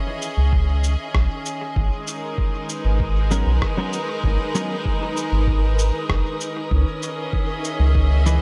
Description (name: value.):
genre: ambient dub.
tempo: 97 BPM.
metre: 4/4.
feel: straight.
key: C# dorian.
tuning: A4 = 442 Hz.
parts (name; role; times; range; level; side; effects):
bright symphonic string section; sustained chords; 0.0-8.4 s; G#3 to E5; -30 LUFS; equal; none.
wind-like tuned noise texture; texture; 0.0-8.4 s; D#3 to D#6; -35 LUFS; equal; built-in reverb.
electronic cabasa and rim click; drums; 0.2-8.4 s; none; -33 LUFS; equal; studio ambience, dub echo.
round analog bass; bass; 0.4-8.4 s; F#1 to C#2; -20 LUFS; equal; tube saturation.
electronic kick drum; drums; 0.5-8.1 s; none; -26 LUFS; equal; studio ambience.
clean electric guitar; stabs; 3.3-8.4 s; E3 to B4; -31 LUFS; equal; lush chorus, dub echo.
room: light reverb, digital ambience.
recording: none.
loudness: -22 LUFS.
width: mono.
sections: 0.0-8.4 A section.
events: none.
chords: 0.0 C#madd9; 1.8 G#m11; 6.7 C#m9.